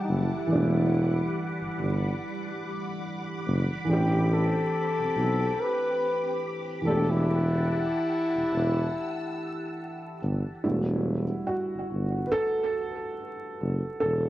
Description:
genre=lo-fi hip hop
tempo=71 BPM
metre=4/4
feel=swing 58% on 16ths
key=E minor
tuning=A4 = 440 Hz
part: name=trumpet with bucket mute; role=melody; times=0.0-10.2 s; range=D#4 to B4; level=-29 LUFS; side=left 1 dB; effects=low-pass filter, tape echo
part: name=dark upright piano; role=accompaniment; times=0.0-14.3 s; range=E3 to B4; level=-30 LUFS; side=right 1 dB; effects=cassette tape, low-pass filter, tape echo
part: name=soft string machine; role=sustained chords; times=0.0-10.6 s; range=G3 to E6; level=-35 LUFS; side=equal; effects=phaser, ensemble chorus, low-pass filter
part: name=mellow tuba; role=bass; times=0.1-14.3 s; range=E1 to B1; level=-27 LUFS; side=equal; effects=none
room=moderate spring reverb, RT60 1.1 s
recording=echo-heavy mix, vinyl crackle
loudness=-25 LUFS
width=side -15 dB against mid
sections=0.0-10.6 A section; 10.6-14.3 B section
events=upright piano solo 10.6-14.3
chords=0.0 Em11; 3.9 Am11; 6.8 Em11

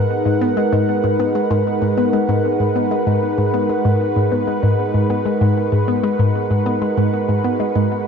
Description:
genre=ambient, sequencer-driven space music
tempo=96 BPM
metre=4/4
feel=straight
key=G# minor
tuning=A4 = 440 Hz
part: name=sweeping resonant pad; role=sustained chords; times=0.0-8.1 s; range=G#3 to F#5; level=-18 LUFS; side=right 2 dB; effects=chorus
part: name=hollow square pluck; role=riff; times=0.0-7.9 s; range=G#2 to B3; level=-18 LUFS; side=left 2 dB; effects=chorus, phaser, cassette tape, ping-pong delay
part: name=wind-like tuned noise texture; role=texture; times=0.7-8.1 s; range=F#4 to F#5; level=-36 LUFS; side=equal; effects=built-in reverb
room=moderate plate reverb, RT60 2.4 s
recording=nothing above 7.8 kHz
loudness=-15 LUFS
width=side -6 dB against mid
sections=0.0-8.1 A section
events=none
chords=0.0 G#m7

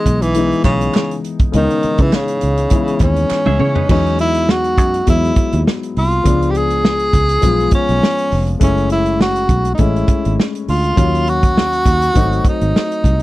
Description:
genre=lush 1970s-style soul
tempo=102 BPM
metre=4/4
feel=swing 54% on 16ths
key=unclear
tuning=A4 = 439 Hz
part: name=breathy tenor saxophone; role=melody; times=0.0-13.2 s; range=C#3 to G#4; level=-17 LUFS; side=right 1 dB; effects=none
part: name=warm baby grand piano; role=accompaniment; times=0.0-13.2 s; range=C#3 to E#5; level=-20 LUFS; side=left 5 dB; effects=none
part: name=fingered electric bass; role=bass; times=0.1-13.2 s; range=E#1 to C#3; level=-17 LUFS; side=right 1 dB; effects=tube saturation
part: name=warm soul drum kit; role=drums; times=0.1-13.2 s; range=crash cymbal, hi-hat, kick drum, snare drum, toms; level=-16 LUFS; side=equal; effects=none
part: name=group handclap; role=percussion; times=0.7-3.5 s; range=none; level=-31 LUFS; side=right 16 dB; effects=none
part: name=semi-hollow electric guitar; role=riff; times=3.5-4.0 s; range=D#4 to E5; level=-25 LUFS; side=right 3 dB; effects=none
room=little or no reverb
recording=none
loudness=-12 LUFS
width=side -17 dB against mid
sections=0.0-3.9 A section; 3.9-13.2 B section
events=drum fill 3.3-3.9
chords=0.0 C#m7; 3.9 Emaj7; 6.3 C#7b9; 8.6 F#m9; 11.0 D#m7; 12.2 G#7b9

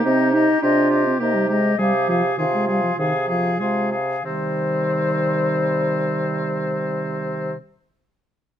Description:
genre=quick classical-period movement for wind quintet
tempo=91-105 BPM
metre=4/4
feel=rubato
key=C minor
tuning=A4 = 441 Hz
part: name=mellow silver concert flute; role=melody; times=0.0-7.5 s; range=C5 to F5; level=-26 LUFS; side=left 7 dB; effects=none
part: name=clear oboe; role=second line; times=0.0-7.5 s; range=C4 to Ab4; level=-26 LUFS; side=left 3 dB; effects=none
part: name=clear clarinet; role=accompaniment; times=0.0-7.5 s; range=G3 to Ab4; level=-27 LUFS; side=right 8 dB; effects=none
part: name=dark French horn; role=accompaniment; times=0.0-7.5 s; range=Eb3 to Eb4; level=-22 LUFS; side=equal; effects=none
part: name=warm bassoon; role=bass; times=0.1-7.5 s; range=C3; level=-24 LUFS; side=right 2 dB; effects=none
room=light reverb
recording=close, detailed microphones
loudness=-18 LUFS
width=side -10 dB against mid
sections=0.0-4.2 A section; 4.2-6.8 B section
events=slowing down 0.0-4.2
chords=0.0 Cm; 1.8 Fm/C; 4.2 Cm

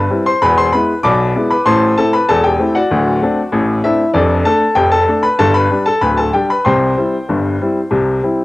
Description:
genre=ragtime piano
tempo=96 BPM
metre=2/4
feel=straight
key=C major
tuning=A4 = 440 Hz
part: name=bright upright piano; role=solo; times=0.0-8.4 s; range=D1 to D6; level=-11 LUFS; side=left 1 dB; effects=cassette tape
room=light reverb, small room reverb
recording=home recording on cassette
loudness=-11 LUFS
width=side -19 dB against mid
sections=0.0-8.4 A section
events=none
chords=0.4 E7; 1.7 Am; 2.9 D7; 4.2 Dm/F; 5.4 G; 6.7 C

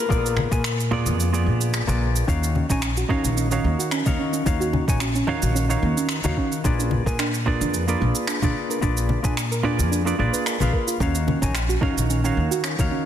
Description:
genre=sunset chillout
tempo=110 BPM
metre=4/4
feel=swing 53% on 16ths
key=Eb minor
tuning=A4 = 440 Hz
part: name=flamenco guitar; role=melody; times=0.0-1.7 s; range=Bb4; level=-29 LUFS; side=left 6 dB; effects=digital delay
part: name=semi-hollow electric guitar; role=accompaniment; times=0.0-13.1 s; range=Eb3 to Ab5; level=-26 LUFS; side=moving between left 5 dB and right 5 dB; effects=auto-pan, tape echo
part: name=upright bass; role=bass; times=0.1-12.9 s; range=Bb1 to Bb2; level=-23 LUFS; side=equal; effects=none
part: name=cabasa and finger snaps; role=drums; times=0.1-12.9 s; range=none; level=-29 LUFS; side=right 2 dB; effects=soft clipping on snare
part: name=electronic kick drum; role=drums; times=0.1-12.9 s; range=none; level=-24 LUFS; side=equal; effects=overdrive
part: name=bongos and congas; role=percussion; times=0.1-12.9 s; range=none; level=-30 LUFS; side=left 3 dB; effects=none
part: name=soft round pluck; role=arpeggios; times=2.3-13.0 s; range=Db4 to Cb5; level=-27 LUFS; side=right 3 dB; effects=chorus, tape echo
room=moderate lush hall reverb, RT60 2.0 s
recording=dense, heavily limited modern master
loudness=-20 LUFS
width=side -10 dB against mid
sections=0.0-13.1 A section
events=kick drops out 1.2-2.3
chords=0.0 Bb7b9; 2.3 Ebm9; 6.6 Bb7b9; 11.0 Ebm9

